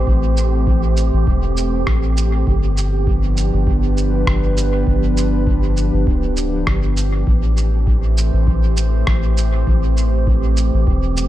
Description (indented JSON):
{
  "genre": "ambient dub",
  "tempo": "100 BPM",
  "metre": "4/4",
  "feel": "swing 56% on 16ths",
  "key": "unclear",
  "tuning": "A4 = 439 Hz",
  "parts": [
    { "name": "warbly tape-like pad", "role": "sustained chords", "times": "0.0-11.3 s", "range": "E3 to C5", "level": "-22 LUFS", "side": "right 1 dB", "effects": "chorus, built-in reverb" },
    { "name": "soft dub sub bass", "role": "bass", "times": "0.0-11.3 s", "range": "D1 to A1", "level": "-17 LUFS", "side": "equal", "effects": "none" },
    { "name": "wind-like tuned noise texture", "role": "texture", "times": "0.0-11.3 s", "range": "G4", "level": "-31 LUFS", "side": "right 10 dB", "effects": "built-in reverb" },
    { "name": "electronic kick drum", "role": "drums", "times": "0.1-11.0 s", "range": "none", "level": "-20 LUFS", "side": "equal", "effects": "studio reverb" },
    { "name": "electronic cabasa and rim click", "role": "drums", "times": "0.4-11.3 s", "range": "none", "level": "-27 LUFS", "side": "right 1 dB", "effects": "studio reverb, dub echo" }
  ],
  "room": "little or no reverb",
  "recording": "none",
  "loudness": "-14 LUFS",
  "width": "side -14 dB against mid",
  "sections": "0.0-11.3 A section",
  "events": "none",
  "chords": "0.0 Am7; 2.5 G7; 7.3 Am7"
}